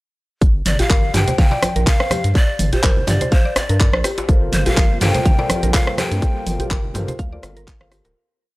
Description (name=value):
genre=afro house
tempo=124 BPM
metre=4/4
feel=swing 55% on 16ths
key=G minor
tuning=A4 = 440 Hz
part: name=round analog bass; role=bass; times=0.4-8.1 s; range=D1 to G2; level=-20 LUFS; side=equal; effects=sidechain pumping
part: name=electronic kick drum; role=drums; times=0.4-7.8 s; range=none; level=-15 LUFS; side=equal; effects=none
part: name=house drum kit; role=drums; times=0.4-8.1 s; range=handclaps, hi-hat, rim click, shaker, toms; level=-22 LUFS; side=equal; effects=none
part: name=congas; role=percussion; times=0.4-7.9 s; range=none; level=-28 LUFS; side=right 2 dB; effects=none
part: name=breathy bright large pan pipes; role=melody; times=0.7-6.9 s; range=C5 to G5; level=-24 LUFS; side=left 1 dB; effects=analog delay
part: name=mallet-like synth pluck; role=arpeggios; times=0.8-8.1 s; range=G4 to F5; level=-27 LUFS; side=equal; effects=chorus, sidechain pumping, analog delay
part: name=djembe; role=percussion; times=0.8-8.1 s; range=none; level=-26 LUFS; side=equal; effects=none
part: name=warm analog pad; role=sustained chords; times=4.3-8.1 s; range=C3 to F4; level=-30 LUFS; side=equal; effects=chorus, sidechain pumping
part: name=felt-muted upright piano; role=stabs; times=4.3-8.1 s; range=F4 to F5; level=-29 LUFS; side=left 2 dB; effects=sidechain pumping, analog delay
room=digital ambience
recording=dry, gritty hardware recording, transformer saturation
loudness=-15 LUFS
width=side -20 dB against mid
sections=0.4-8.2 drop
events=drop 0.4-8.2; fade-out 5.6-8.2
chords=0.4 Gm11